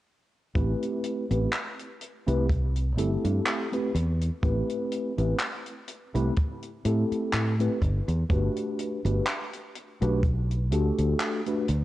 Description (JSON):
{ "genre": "vaporwave", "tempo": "62 BPM", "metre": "4/4", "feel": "swing 55% on 16ths", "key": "unclear", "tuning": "A4 = 437 Hz", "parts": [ { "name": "mellow tine electric piano", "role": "accompaniment", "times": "0.5-11.7 s", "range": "A3 to B4", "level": "-29 LUFS", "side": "equal", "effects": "medium stereo tremolo, lush chorus, analog delay" }, { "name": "fingered electric bass", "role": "bass", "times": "0.6-11.8 s", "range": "G1 to A2", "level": "-25 LUFS", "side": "equal", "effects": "none" }, { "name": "compact cocktail drum kit", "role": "drums", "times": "0.6-11.8 s", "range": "handclaps, hi-hat", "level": "-32 LUFS", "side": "equal", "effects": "vintage 12-bit sampler grit, small room ambience, gated reverb" }, { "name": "kick drum", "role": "drums", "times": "0.6-10.4 s", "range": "none", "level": "-26 LUFS", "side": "equal", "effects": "vintage 12-bit sampler grit, small room ambience" } ], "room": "light reverb", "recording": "cassette tape", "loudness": "-25 LUFS", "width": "side -15 dB against mid", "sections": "0.6-11.8 A section", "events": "none", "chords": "0.6 Am9; 8.3 Gmaj9" }